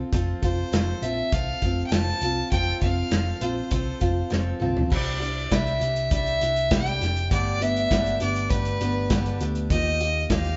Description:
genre	folk rock and heartland rock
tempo	100 BPM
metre	4/4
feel	straight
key	C major from 4.9 s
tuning	A4 = 440 Hz
part	picked acoustic archtop guitar	accompaniment	0.0-10.6 s	G2 to A4	-32 LUFS	equal	none
part	hollow-body short-scale picked electric bass	bass	0.1-10.6 s	F1 to Eb2	-30 LUFS	equal	none
part	natural country drum kit	drums	0.1-10.6 s	crash cymbal, hi-hat, kick drum, snare drum, toms	-28 LUFS	equal	none
part	clear fiddle	melody	0.4-10.6 s	B4 to A5	-30 LUFS	equal	none
room	moderate stone room reverb, RT60 1.3 s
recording	band playing live in one room, nothing above 7.7 kHz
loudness	-24 LUFS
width	mono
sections	0.0-4.9 A section; 4.9-10.6 B section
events	drum fill 4.3-4.9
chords	0.0 F; 4.9 Cadd9; 7.3 Gadd9; 9.7 Ebadd9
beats	| 0.12 0.72 1.32 1.92 | 2.52 3.12 3.72 4.32 | 4.92 5.51 6.11 6.71 | 7.31 7.91 8.51 9.10 | 9.70 10.30

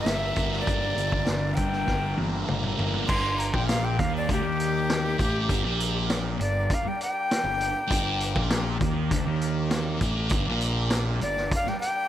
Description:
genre	psychedelic rock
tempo	100 BPM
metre	4/4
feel	straight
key	G minor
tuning	A4 = 439 Hz
part	breathy bright jazz flute	melody	0.0-12.1 s	G4 to C6	-29 LUFS	left 1 dB	analog delay
part	combo organ	sustained chords	0.0-12.1 s	G3 to E5	-38 LUFS	right 1 dB	none
part	thick fuzz guitar	riff	0.0-11.7 s	G2 to D4	-29 LUFS	left 1 dB	distortion, phaser
part	fuzz picked electric bass	bass	0.1-11.7 s	G1 to Eb2	-30 LUFS	equal	overdrive
part	vintage drum kit	drums	0.1-12.0 s	crash cymbal, hi-hat, kick drum, snare drum, toms	-29 LUFS	equal	none
room	light reverb, studio ambience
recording	none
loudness	-23 LUFS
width	side -11 dB against mid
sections	0.0-3.1 A section; 3.1-12.1 B section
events	drum fill 1.9-3.1; flute solo 3.1-12.1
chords	0.0 Gm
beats	0.06 | 0.66 1.27 1.87 2.47 | 3.08 3.68 4.28 4.89 | 5.49 6.09 6.70 7.30 | 7.90 8.51 9.11 9.71 | 10.31 10.91 11.52

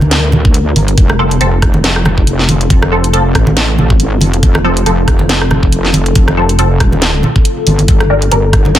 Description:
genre	deep dubstep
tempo	139 BPM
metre	4/4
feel	swing 56% on 16ths, half-time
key	unclear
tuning	A4 = 441 Hz
part	deep dark ambient pad	sustained chords	0.0-8.8 s	G3 to Bb4	-19 LUFS	left 1 dB	chorus, built-in reverb
part	wobble bass	bass	0.0-8.8 s	Eb1 to D2	-12 LUFS	equal	chorus
part	congas	percussion	0.0-8.7 s	none	-15 LUFS	right 1 dB	none
part	garage drum kit	drums	0.1-8.8 s	hi-hat, rim click, snare drum	-16 LUFS	equal	soft clipping on snare
part	electronic kick drum	drums	0.5-8.6 s	none	-10 LUFS	equal	none
part	filtered dub chord stab	stabs	1.2-8.4 s	F3 to Bb4	-18 LUFS	equal	phaser, ensemble chorus, dub echo
room	digital ambience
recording	dense, heavily limited modern master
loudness	-8 LUFS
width	side -12 dB against mid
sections	0.0-8.8 A section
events	kick drops out 7.5-7.9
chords	0.0 Gm; 1.0 F; 7.9 Gm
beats	0.11 0.55 | 0.98 1.41 1.84 2.27 | 2.70 3.13 3.57 4.00 | 4.43 4.86 5.29 5.72 | 6.16 6.59 7.02 7.45 | 7.88 8.31 8.75

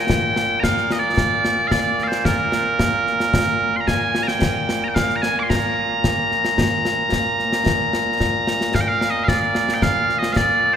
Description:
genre	scottish traditional, Scottish pipe music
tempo	111 BPM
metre	4/4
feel	straight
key	Bb mixolydian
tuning	A4 = 440 Hz
part	loud bright bagpipes	melody	0.0-10.8 s	Bb2 to D6	-19 LUFS	right 1 dB	none
part	concert snare drum and concert bass drum	drums	0.1-10.5 s	none	-22 LUFS	left 1 dB	none
room	wet church reverb, RT60 3.7 s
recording	recorded in a church or concert hall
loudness	-17 LUFS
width	side -8 dB against mid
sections	0.1-8.7 A section; 8.7-10.8 B section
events	none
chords	none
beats	| 0.09 0.63 1.17 1.71 | 2.25 2.79 3.33 3.88 | 4.42 4.96 5.50 6.04 | 6.58 7.12 7.66 8.20 | 8.74 9.28 9.82 10.36

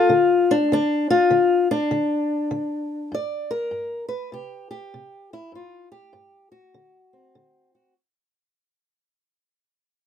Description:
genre	acoustic country blues, solo or duo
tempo	99 BPM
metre	4/4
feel	swing 64% on 8ths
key	unclear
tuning	A4 = 442 Hz
part	fingerpicked old ladder-braced acoustic guitar	solo	0.0-7.9 s	G2 to D5	-20 LUFS	left 2 dB	none
room	moderate booth ambience, RT60 0.2 s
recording	close, detailed microphones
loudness	-19 LUFS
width	side -8 dB against mid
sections	0.0-8.0 A section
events	fade-out 0.0-8.0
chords	0.0 N.C.; 6.7 D7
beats	0.11 | 0.71 1.31 1.92 2.52 | 3.12 3.73 4.33 4.94 | 5.54 6.14 6.75 7.35

